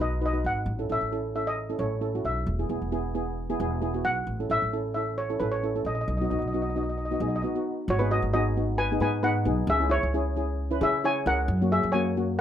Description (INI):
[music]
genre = calypso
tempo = 133 BPM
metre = 4/4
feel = swing 53% on 16ths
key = unclear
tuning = A4 = 440 Hz
[part]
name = steel pan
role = melody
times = 0.0-12.4 s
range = D#4 to G#5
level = -28 LUFS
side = equal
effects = none
[part]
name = steel pan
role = accompaniment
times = 0.0-12.4 s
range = A#3 to B4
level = -29 LUFS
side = equal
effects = none
[part]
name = upright bass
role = bass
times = 0.0-12.4 s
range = E1 to C#3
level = -29 LUFS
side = equal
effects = none
[sound]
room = moderate small room ambience, RT60 0.5 s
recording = none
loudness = -24 LUFS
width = side -10 dB against mid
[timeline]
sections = 0.0-7.9 A section; 7.9-12.4 B section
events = none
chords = 0.0 B; 0.7 A; 2.5 E; 4.3 A; 6.1 B; 7.9 G#m7; 9.7 C#m; 11.5 F#7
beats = 0.21 | 0.66 1.11 1.57 2.02 | 2.47 2.92 3.37 3.82 | 4.28 4.73 5.18 5.63 | 6.08 6.54 6.99 7.44 | 7.89 8.34 8.79 9.24 | 9.69 10.14 10.59 11.04 | 11.49 11.95 12.40